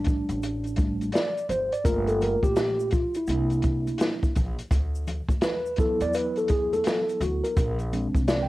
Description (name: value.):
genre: hip hop, jazz-hop.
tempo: 84 BPM.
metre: 4/4.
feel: swing 64% on 16ths.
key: unclear.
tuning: A4 = 439 Hz.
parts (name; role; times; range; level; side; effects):
mellow tine electric piano; accompaniment; 0.0-8.5 s; F#3 to G5; -26 LUFS; equal; medium stereo tremolo, cassette tape, plate reverb.
upright bass; bass; 0.0-8.5 s; G1 to E2; -30 LUFS; equal; none.
open jazz drum kit; drums; 0.0-8.5 s; hi-hat, kick drum, snare drum; -26 LUFS; equal; cassette tape.
congas and tube shaker; percussion; 0.1-8.5 s; none; -41 LUFS; left 3 dB; none.
room: light reverb.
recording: home recording on cassette.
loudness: -23 LUFS.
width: side -18 dB against mid.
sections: 0.0-8.5 A section.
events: tine electric piano solo 0.0-8.5.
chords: 0.0 F6 (rootless); 1.9 Gm7; 3.3 C9; 4.7 D69; 7.6 Bb9.